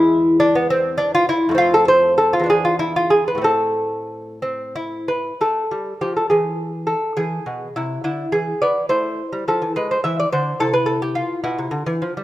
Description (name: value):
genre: classical, baroque-style dance for lute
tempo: 61-74 BPM (dotted quarters)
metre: 6/8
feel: rubato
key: unclear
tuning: A4 = 439 Hz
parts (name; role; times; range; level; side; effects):
- lute; solo; 0.0-12.2 s; E2 to E5; -17 LUFS; equal; none
room: moderate recital hall reverb, RT60 1.7 s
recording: minimal, uncompressed stereo recording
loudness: -17 LUFS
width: side -15 dB against mid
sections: 0.0-5.4 A section; 5.4-12.2 B section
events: none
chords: 0.0 E; 1.6 F; 2.5 E5; 3.4 Am; 5.4 Fadd9; 6.3 N.C.; 7.2 E7; 8.9 Am; 9.8 E; 10.6 Fmaj9#11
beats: 0.70 | 1.59 2.49 | 3.44 4.42 | 5.40 6.30 | 7.17 8.04 | 8.90 9.76 | 10.59 11.43